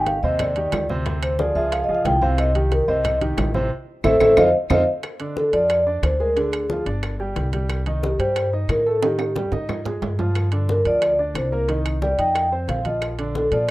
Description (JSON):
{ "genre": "Afro-Cuban jazz", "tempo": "180 BPM", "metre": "4/4", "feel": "straight", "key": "unclear", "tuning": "A4 = 439 Hz", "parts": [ { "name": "vibraphone with soft mallets", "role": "melody", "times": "0.0-13.7 s", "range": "G4 to G5", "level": "-19 LUFS", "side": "equal", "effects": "plate reverb" }, { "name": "warm baby grand piano", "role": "accompaniment", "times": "0.0-13.7 s", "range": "C3 to Eb5", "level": "-28 LUFS", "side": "right 1 dB", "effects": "plate reverb" }, { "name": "upright bass", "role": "bass", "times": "0.0-13.7 s", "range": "G1 to Bb2", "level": "-24 LUFS", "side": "equal", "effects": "none" }, { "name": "bongos", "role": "percussion", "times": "0.1-13.7 s", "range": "none", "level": "-35 LUFS", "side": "left 7 dB", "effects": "none" }, { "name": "congas", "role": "percussion", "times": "0.1-13.7 s", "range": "none", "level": "-32 LUFS", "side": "left 1 dB", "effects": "none" }, { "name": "timbales", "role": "percussion", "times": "0.1-13.7 s", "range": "none", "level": "-30 LUFS", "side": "right 7 dB", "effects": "none" }, { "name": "claves", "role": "percussion", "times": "0.4-13.7 s", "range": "none", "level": "-35 LUFS", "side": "left 2 dB", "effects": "none" } ], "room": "moderate studio reverb, RT60 0.6 s", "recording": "rough home demo mix", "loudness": "-18 LUFS", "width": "side -18 dB against mid", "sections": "0.0-5.0 A section; 5.0-13.7 B section", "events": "vibraphone solo 0.0-5.0; band accent 3.7-5.0; drum fill 4.0-5.0, 9.0-10.4", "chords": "0.0 Abmaj7; 1.1 Dm7b5; 1.7 C#; 2.4 Cm; 3.7 Am; 4.4 F5; 5.0 Ddim; 7.0 G5; 7.7 Cm; 9.0 Ebadd11; 9.7 Ab5; 10.4 Gm7; 11.7 Cm; 12.4 F5; 13.0 Bb" }